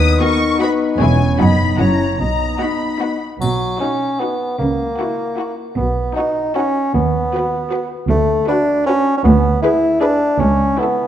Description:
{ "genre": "cinematic, playful, whimsical film cue", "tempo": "154 BPM", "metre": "3/4", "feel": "straight", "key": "B major", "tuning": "A4 = 438 Hz", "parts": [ { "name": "warm studio violin section", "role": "melody", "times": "0.0-11.1 s", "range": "E5 to D#6", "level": "-24 LUFS", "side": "left 4 dB", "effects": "none" }, { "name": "warm clarinet", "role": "second line", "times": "0.0-3.2 s", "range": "A#4 to D#5", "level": "-24 LUFS", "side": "left 2 dB", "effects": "none" }, { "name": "warm French horn section", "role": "sustained chords", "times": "0.0-3.2 s", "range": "B3 to E4", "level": "-20 LUFS", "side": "left 4 dB", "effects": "none" }, { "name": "rich studio cello section", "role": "bass", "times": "0.0-10.7 s", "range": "C#2 to C#3", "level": "-19 LUFS", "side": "right 2 dB", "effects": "none" }, { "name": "rich studio double bass section", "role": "bass", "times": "0.0-10.7 s", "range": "E1 to D#2", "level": "-20 LUFS", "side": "right 2 dB", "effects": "none" }, { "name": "rich studio violin section", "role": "second line", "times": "0.2-11.1 s", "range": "F#4 to F#5", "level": "-27 LUFS", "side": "left 4 dB", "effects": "none" }, { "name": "rich studio viola section", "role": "accompaniment", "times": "0.2-11.1 s", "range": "B3 to G#4", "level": "-25 LUFS", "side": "equal", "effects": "none" }, { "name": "warm bassoon", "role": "accompaniment", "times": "3.4-11.1 s", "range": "F#3 to E4", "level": "-17 LUFS", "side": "equal", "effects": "none" }, { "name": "triangle", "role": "percussion", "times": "3.4-4.2 s", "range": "none", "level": "-34 LUFS", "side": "left 4 dB", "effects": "none" } ], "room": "wet scoring stage reverb, RT60 1.7 s", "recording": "dark, warm production", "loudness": "-14 LUFS", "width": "side -10 dB against mid", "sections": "0.0-3.4 A section; 3.4-11.1 B section", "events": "none", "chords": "0.0 B/D#; 1.0 C#m7/E; 1.4 B/F#; 1.8 F#7; 2.2 B; 4.6 F#7/C#; 5.8 B; 6.9 B/D#; 8.1 Bm7/D; 9.2 E7/D; 10.4 A/C#", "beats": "0.23 0.61 | 1.00 1.40 1.80 | 2.20 2.61 3.01 | 3.42 3.81 4.21 | 4.60 4.99 5.38 | 5.77 6.16 6.55 | 6.94 7.32 7.71 | 8.09 8.48 8.86 | 9.25 9.63 10.02 | 10.41 10.79" }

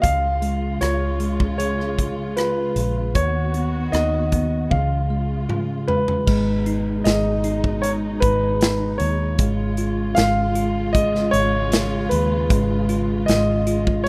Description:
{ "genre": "pop ballad", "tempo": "77 BPM", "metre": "4/4", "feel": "straight", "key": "unclear", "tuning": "A4 = 440 Hz", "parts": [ { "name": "clear concert grand piano", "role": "melody", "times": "0.0-14.1 s", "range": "B4 to E#5", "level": "-26 LUFS", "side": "equal", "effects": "none" }, { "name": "bell-like tine electric piano", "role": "accompaniment", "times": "0.0-14.1 s", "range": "C#3 to G#4", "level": "-27 LUFS", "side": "equal", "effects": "none" }, { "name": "dark studio string section", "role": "sustained chords", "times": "0.0-14.1 s", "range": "B2 to F#4", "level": "-33 LUFS", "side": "equal", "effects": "none" }, { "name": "vintage muted fingered electric bass", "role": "bass", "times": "0.0-14.1 s", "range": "G#1 to D#2", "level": "-26 LUFS", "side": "equal", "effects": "none" }, { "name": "modern studio drum kit", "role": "drums", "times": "0.0-14.1 s", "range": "crash cymbal, hi-hat, kick drum, rim click, snare drum, toms", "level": "-25 LUFS", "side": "equal", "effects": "none" } ], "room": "small room reverb", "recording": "rough home demo mix", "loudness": "-21 LUFS", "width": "mono", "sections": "0.0-6.3 A section; 6.3-14.1 B section", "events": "drum fill 4.7-6.3", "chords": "0.0 C#; 3.2 B/D#; 4.7 C#; 6.3 G#m; 9.4 C#/G#", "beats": "| 0.04 0.82 1.60 2.38 | 3.16 3.94 4.71 5.49 | 6.27 7.05 7.83 8.61 | 9.39 10.17 10.95 11.73 | 12.51 13.29 14.06" }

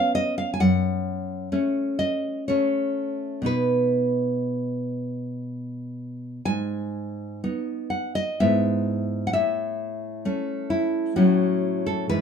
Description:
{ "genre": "romantic piece for solo classical guitar", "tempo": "59-68 BPM", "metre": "3/4", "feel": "rubato", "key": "unclear", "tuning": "A4 = 439 Hz", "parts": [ { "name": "nylon-string guitar", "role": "solo", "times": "0.0-12.2 s", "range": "F#2 to G#5", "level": "-22 LUFS", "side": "equal", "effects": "none" } ], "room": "moderate studio reverb, RT60 0.8 s", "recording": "minimal, uncompressed stereo recording", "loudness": "-22 LUFS", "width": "side -7 dB against mid", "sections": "0.0-12.2 A section", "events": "none", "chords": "0.0 C#7; 0.6 F#m; 3.5 B; 6.5 G#m; 8.4 E/G#; 9.3 A; 11.2 F#m/A", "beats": "| 0.59 1.51 2.47 | 3.46 4.47 5.45 | 6.45 7.43 8.39 | 9.33 10.25 11.17 | 12.09" }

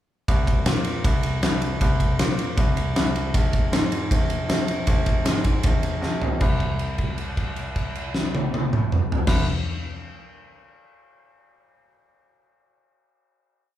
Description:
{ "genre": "hard rock", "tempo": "156 BPM", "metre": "4/4", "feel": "straight", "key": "unclear", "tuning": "A4 = 440 Hz", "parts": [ { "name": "warm grand piano", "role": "bass", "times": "0.3-9.4 s", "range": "Bb1 to Bb2", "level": "-27 LUFS", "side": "right 1 dB", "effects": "none" }, { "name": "big rock drum kit", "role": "drums", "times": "0.3-9.4 s", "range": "crash cymbal, kick drum, ride cymbal, snare drum, toms", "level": "-22 LUFS", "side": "equal", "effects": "none" } ], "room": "light reverb", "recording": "band playing live in one room", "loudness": "-20 LUFS", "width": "side -12 dB against mid", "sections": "0.3-6.4 riff; 6.4-9.5 final note", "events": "drum fill 6.0-6.4; held note 6.4-9.3", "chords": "none", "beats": "| 0.28 0.66 1.04 1.43 | 1.81 2.19 2.57 2.95 | 3.33 3.72 4.10 4.48 | 4.87 5.25 5.63 6.02 | 6.41 6.79 7.18 7.57 | 7.96 8.34 8.73 9.12" }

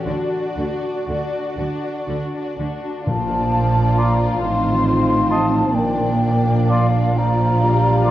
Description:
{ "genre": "classical, slow romantic movement for symphony orchestra", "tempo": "38-46 BPM (dotted quarters)", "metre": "6/8", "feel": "rubato", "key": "D major, Bb major from 3.1 s", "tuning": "A4 = 441 Hz", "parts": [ { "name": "warm symphonic violin section", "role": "melody", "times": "0.0-8.1 s", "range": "C5 to D5", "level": "-32 LUFS", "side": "left 3 dB", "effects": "none" }, { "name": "warm symphonic violin section", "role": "second line", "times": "0.0-8.1 s", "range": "D4 to F#4", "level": "-27 LUFS", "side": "left 1 dB", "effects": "none" }, { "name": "dark symphonic viola section", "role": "accompaniment", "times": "0.0-8.1 s", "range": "F3 to F#4", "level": "-25 LUFS", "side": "equal", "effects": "none" }, { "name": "concert harp", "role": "arpeggios", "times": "0.0-8.1 s", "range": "A2 to D5", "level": "-31 LUFS", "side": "left 4 dB", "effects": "none" }, { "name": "rich studio double bass section", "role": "bass", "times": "0.0-8.1 s", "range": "A1 to D2", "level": "-21 LUFS", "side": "right 2 dB", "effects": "none" }, { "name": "dark symphonic cello section", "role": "bass", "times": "0.1-8.1 s", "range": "A2 to D3", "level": "-25 LUFS", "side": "right 2 dB", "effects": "none" }, { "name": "mellow hollow concert flute", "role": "second line", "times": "3.1-8.1 s", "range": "F5 to C6", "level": "-21 LUFS", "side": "left 1 dB", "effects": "none" }, { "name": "warm French horn section", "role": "sustained chords", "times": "3.1-8.1 s", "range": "F3 to Eb4", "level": "-26 LUFS", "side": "left 2 dB", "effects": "none" }, { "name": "timpani", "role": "percussion", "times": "3.1-4.4 s", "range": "Bb2", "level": "-27 LUFS", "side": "left 2 dB", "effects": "none" }, { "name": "bright clarinet", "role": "second line", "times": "4.0-8.1 s", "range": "F4", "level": "-29 LUFS", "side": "left 1 dB", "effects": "none" }, { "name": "mellow cor anglais", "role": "second line", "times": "4.0-8.1 s", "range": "D5 to Eb5", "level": "-29 LUFS", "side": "right 2 dB", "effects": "none" } ], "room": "moderate concert hall reverb, RT60 2.2 s", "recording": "worn, warbling old tape, cassette tape, warbly pitch drift", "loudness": "-16 LUFS", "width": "side -14 dB against mid", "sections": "0.0-3.1 A section; 3.1-8.1 B section", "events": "none", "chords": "0.1 D; 3.1 Bb; 4.4 F7/A; 5.7 Bb", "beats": "| 0.06 1.58 | 3.07 4.42 | 5.75 7.17" }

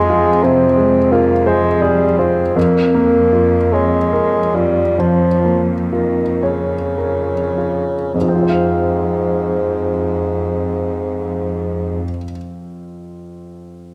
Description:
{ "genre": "classical, romantic movement for piano and orchestra", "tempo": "32-60 BPM (dotted quarters)", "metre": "12/8", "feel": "rubato", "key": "F minor", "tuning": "A4 = 439 Hz", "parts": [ { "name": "clear grand piano", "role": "melody", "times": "0.0-13.9 s", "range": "F2 to F5", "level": "-20 LUFS", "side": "equal", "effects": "none" }, { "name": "mellow bassoon", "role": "accompaniment", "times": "0.0-12.0 s", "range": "Ab2 to C4", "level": "-19 LUFS", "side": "equal", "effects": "none" }, { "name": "rich studio cello section", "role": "bass", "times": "0.0-12.0 s", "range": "F2", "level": "-24 LUFS", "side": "equal", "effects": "none" } ], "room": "moderate scoring stage reverb, RT60 1.8 s", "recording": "none", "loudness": "-16 LUFS", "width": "mono", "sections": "0.0-8.1 A section; 8.1-13.9 B section", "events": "slowing down 0.0-8.1", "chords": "0.0 Fm; 2.6 Bbm/F; 8.1 Fm", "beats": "0.43 1.46 | 2.56 3.72 4.98 6.43 | 8.14 9.74 11.36 12.92" }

